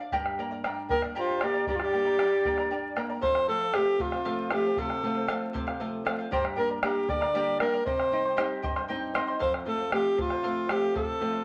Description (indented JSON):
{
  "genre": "andean folk, Andean ensemble",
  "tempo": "78 BPM (dotted quarters)",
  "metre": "6/8",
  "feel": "straight",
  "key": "unclear",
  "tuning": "A4 = 444 Hz",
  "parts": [
    { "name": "charango", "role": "accompaniment", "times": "0.0-11.4 s", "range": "G4 to C6", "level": "-37 LUFS", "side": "equal", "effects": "none" },
    { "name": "flamenco guitar", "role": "accompaniment", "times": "0.0-11.4 s", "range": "F2 to G5", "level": "-38 LUFS", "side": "equal", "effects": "none" },
    { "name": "bombo", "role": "percussion", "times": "0.1-11.1 s", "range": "none", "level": "-36 LUFS", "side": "equal", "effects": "none" },
    { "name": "clear alto saxophone", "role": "melody", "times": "0.9-11.4 s", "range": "F4 to D5", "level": "-29 LUFS", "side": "equal", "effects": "none" },
    { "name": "quena", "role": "second line", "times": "0.9-3.0 s", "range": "C5 to G5", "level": "-35 LUFS", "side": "equal", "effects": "none" }
  ],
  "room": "wet studio reverb, RT60 0.6 s",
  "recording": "vinyl crackle",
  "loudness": "-28 LUFS",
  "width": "mono",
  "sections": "0.0-3.2 A section; 3.2-11.4 B section",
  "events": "nylon-string guitar fill 8.6-9.4",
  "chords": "0.1 Gm; 3.2 F; 6.3 Gm; 7.9 Cm; 9.4 F",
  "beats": "| 0.13 0.91 | 1.68 2.45 | 3.23 4.00 | 4.77 5.55 | 6.32 7.09 | 7.87 8.64 | 9.41 10.19 | 10.96"
}